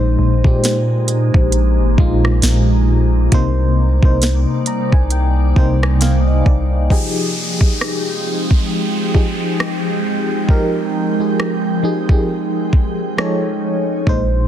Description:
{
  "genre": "contemporary R&B",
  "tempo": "67 BPM",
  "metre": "4/4",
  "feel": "swing 58% on 16ths",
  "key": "F dorian",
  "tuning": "A4 = 438 Hz",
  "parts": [
    { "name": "FM electric piano with tremolo", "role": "accompaniment", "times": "0.0-14.5 s", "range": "Bb2 to Bb5", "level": "-19 LUFS", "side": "left 1 dB", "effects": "phaser" },
    { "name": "glassy FM pad", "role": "sustained chords", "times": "0.0-14.5 s", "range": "C3 to G5", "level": "-22 LUFS", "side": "right 2 dB", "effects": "ensemble chorus, built-in reverb, sidechain pumping" },
    { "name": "long sustained 808-style bass", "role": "bass", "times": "0.0-6.9, 14.1-14.5 s", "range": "Ab1 to Bb2", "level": "-15 LUFS", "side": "equal", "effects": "none" },
    { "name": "smooth R&B drum kit", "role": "drums", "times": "0.4-14.3 s", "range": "hi-hat, kick drum, rim click, snare drum", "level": "-15 LUFS", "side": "equal", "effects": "none" },
    { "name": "downlifter", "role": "sound effects", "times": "6.9-14.1 s", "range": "none", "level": "-27 LUFS", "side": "equal", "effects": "none" }
  ],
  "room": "digital ambience",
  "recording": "dense, heavily limited modern master",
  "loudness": "-13 LUFS",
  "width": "side -10 dB against mid",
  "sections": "0.0-6.9 A section; 6.9-14.5 B section",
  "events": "FM electric piano fill 4.2-6.9",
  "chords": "0.0 Bb9sus4; 3.3 Cm7; 6.9 Fm9; 13.2 F7alt",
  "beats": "0.64 1.53 2.43 | 3.32 4.22 5.11 6.01 | 6.90 7.80 8.70 9.59 | 10.49 11.38 12.28 13.17 | 14.07"
}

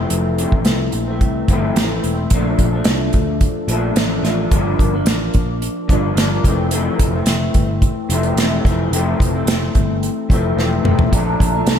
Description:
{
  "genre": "indie pop, bedroom pop",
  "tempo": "109 BPM",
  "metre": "4/4",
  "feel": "straight",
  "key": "unclear",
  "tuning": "A4 = 439 Hz",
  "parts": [
    { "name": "electric guitar through a small old amp", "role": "accompaniment", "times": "0.0-11.8 s", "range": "F2 to D4", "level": "-19 LUFS", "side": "left 2 dB", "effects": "analog chorus, warbly pitch drift" },
    { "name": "picked electric bass", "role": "bass", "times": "0.0-11.8 s", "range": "E1 to D2", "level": "-20 LUFS", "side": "equal", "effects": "none" },
    { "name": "unplugged drum kit", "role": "drums", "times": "0.1-11.8 s", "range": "hi-hat, kick drum, snare drum, toms", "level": "-18 LUFS", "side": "equal", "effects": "none" },
    { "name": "large flute ensemble", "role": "sustained chords", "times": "11.1-11.8 s", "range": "D4 to Bb5", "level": "-22 LUFS", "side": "right 2 dB", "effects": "none" }
  ],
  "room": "light reverb, small room ambience",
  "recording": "none",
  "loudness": "-14 LUFS",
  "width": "side -8 dB against mid",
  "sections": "0.0-2.3 A section; 2.3-11.8 B section",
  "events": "drum fill 10.6-11.1",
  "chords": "0.0 Fmaj7; 2.3 Bbmaj7; 4.5 Gm7; 6.4 Fmaj9; 11.1 Bbmaj7",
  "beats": "| 0.11 0.66 1.21 1.76 | 2.31 2.87 3.42 3.97 | 4.52 5.07 5.62 6.17 | 6.72 7.27 7.82 8.37 | 8.92 9.47 10.02 10.57 | 11.12 11.67"
}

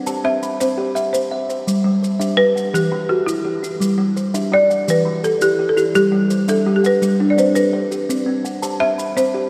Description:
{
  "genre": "southern african traditional, mbira-style interlocking cycle",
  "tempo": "112 BPM (dotted quarters)",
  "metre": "12/8",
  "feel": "straight",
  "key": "G major",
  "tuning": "A4 = 440 Hz",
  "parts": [
    { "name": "kalimba", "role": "arpeggios", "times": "0.0-9.5 s", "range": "E3 to B5", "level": "-24 LUFS", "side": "equal", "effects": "none" },
    { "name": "kalimba", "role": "arpeggios", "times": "0.0-9.5 s", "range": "E3 to A5", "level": "-25 LUFS", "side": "equal", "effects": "none" },
    { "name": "maracas", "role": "percussion", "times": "0.1-9.3 s", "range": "none", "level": "-36 LUFS", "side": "equal", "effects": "none" },
    { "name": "folk marimba with medium hard mallets", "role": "melody", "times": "0.2-9.5 s", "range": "E4 to E5", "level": "-20 LUFS", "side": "equal", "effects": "none" }
  ],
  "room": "wet cathedral reverb, RT60 5.2 s",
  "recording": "recorded in a church or concert hall",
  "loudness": "-18 LUFS",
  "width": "mono",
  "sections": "0.0-9.5 A section",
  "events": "none",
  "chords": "0.0 C; 1.7 G; 2.7 Em; 3.8 G5; 4.9 Em; 6.0 G; 8.1 C",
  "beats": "0.07 0.60 1.14 | 1.67 2.21 2.74 3.28 | 3.81 4.35 4.88 5.42 | 5.96 6.49 7.03 7.57 | 8.10 8.64 9.17"
}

